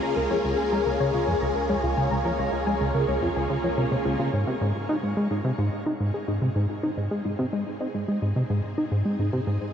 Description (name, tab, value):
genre	ambient, sequencer-driven space music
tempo	108 BPM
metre	4/4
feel	straight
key	unclear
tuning	A4 = 438 Hz
part	phased string machine	sustained chords	0.0-9.7 s	Ab3 to Ab4	-29 LUFS	left 1 dB	ensemble chorus, phaser
part	soft round pluck	arpeggios	0.0-9.7 s	Eb4 to Eb6	-32 LUFS	equal	chorus, auto-pan, tape echo
part	plucky analog bass	riff	0.0-9.6 s	Db2 to Eb4	-25 LUFS	equal	tape echo
part	warm sub bass	bass	0.0-4.3 s	Db2	-35 LUFS	equal	tube saturation
room	wet shimmer reverb, RT60 8.7 s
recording	worn, warbling old tape, cassette tape, warbly pitch drift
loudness	-23 LUFS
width	side -8 dB against mid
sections	0.0-4.3 A section; 4.3-9.7 B section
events	filter sweep on analog synth bass 0.0-4.3; fade-in on synth arpeggio sound 4.3-9.7; fade-in on string machine 4.3-9.7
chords	0.0 Db6; 4.3 Ab